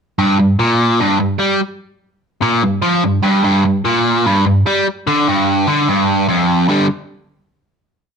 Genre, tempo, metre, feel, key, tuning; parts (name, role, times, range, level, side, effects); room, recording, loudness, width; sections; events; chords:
rock; 148 BPM; 4/4; straight; A4 = 440 Hz
biting overdriven guitar; solo; 0.2-6.9 s; F2 to G3; -12 LUFS; equal
moderate large studio reverb, RT60 0.9 s, digital ambience; -12 LUFS; side -6 dB against mid
0.2-6.7 riff; 6.7-8.2 final chord
0.2 G5